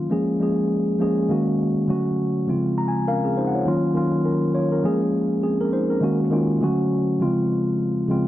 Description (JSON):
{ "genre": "soul", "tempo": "102 BPM", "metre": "4/4", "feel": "swing 58% on 16ths", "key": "Eb dorian", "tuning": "A4 = 439 Hz", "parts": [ { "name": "mellow tine electric piano", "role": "solo", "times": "0.0-8.3 s", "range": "Db3 to Bb5", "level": "-19 LUFS", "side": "equal", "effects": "none" } ], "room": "light reverb", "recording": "dark, warm production", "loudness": "-19 LUFS", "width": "side -14 dB against mid", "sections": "0.0-3.7 A section; 3.7-8.3 B section", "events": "tine electric piano fill 2.5-3.7", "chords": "0.1 Bbm7; 1.3 Ab9sus4; 1.9 Dmaj7; 2.5 Dbmaj7; 3.7 Ebm9; 4.8 Bbm7; 6.0 Ab9sus4; 6.6 Dmaj7; 7.2 Dbmaj7", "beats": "0.12 0.71 | 1.30 1.89 2.48 3.08 | 3.67 4.26 4.85 5.44 | 6.03 6.62 7.21 7.80" }